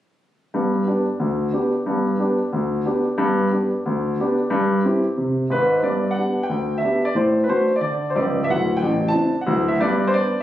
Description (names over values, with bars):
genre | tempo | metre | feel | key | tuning
jazz, stride piano | 181 BPM | 4/4 | swing 66% on 8ths | G major | A4 = 440 Hz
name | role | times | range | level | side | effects
warm concert grand piano | solo | 0.5-10.4 s | A0 to A5 | -18 LUFS | equal | none
room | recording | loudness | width
light reverb | recorded on a phone in the room, studio reverb, compression | -18 LUFS | side -12 dB against mid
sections
0.5-5.8 A section; 5.8-10.4 B section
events
none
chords
0.5 G; 4.5 C/G; 5.8 G; 7.2 D/A; 8.5 Dsus2; 9.8 G